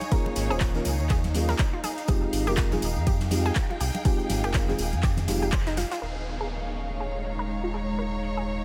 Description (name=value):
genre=deep house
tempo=122 BPM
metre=4/4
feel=swing 58% on 16ths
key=unclear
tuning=A4 = 440 Hz
part: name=deep house drum kit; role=drums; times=0.0-8.3 s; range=crash cymbal, handclaps, hi-hat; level=-37 LUFS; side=equal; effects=overdrive, low-pass filter on hats, low-pass filter on snare, low-pass filter on cymbals, low-pass filter on room
part: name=congas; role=percussion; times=0.0-5.9 s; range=none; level=-39 LUFS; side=equal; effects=none
part: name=tambourine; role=percussion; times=0.0-6.0 s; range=none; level=-42 LUFS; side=equal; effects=none
part: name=warm symphonic string section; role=texture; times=0.0-8.6 s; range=Eb4 to Bb5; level=-37 LUFS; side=equal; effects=sidechain pumping
part: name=analog pluck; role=arpeggios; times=0.1-8.4 s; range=Eb4 to C5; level=-38 LUFS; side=equal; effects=chorus, sidechain pumping, dub echo
part: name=felt-muted upright piano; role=stabs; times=0.1-5.5 s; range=Ab3 to C5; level=-34 LUFS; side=equal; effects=sidechain pumping, dub echo
part: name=electronic kick drum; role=drums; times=0.1-5.6 s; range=none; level=-28 LUFS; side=equal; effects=overdrive
part: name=oversized low-tuned drum kit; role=drums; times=0.1-6.0 s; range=hi-hat, snare drum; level=-47 LUFS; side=equal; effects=none
part: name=round analog bass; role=bass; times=0.4-8.6 s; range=Eb1 to F2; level=-32 LUFS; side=equal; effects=none
part: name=dark analog pad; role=sustained chords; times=6.6-8.6 s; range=Ab3 to Eb5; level=-36 LUFS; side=equal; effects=chorus, phaser, sidechain pumping
part: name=downlifter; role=sound effects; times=6.0-8.6 s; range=none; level=-43 LUFS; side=equal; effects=none
room=light reverb, studio reverb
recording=none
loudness=-27 LUFS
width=mono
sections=0.0-6.0 A section; 6.0-8.6 B section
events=band accent 5.5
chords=0.0 Eb9sus4; 2.1 Fm9; 6.0 Eb9sus4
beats=| 0.12 0.61 1.10 1.59 | 2.08 2.58 3.07 3.56 | 4.05 4.54 5.04 5.53 | 6.02 6.51 7.00 7.49 | 7.99 8.48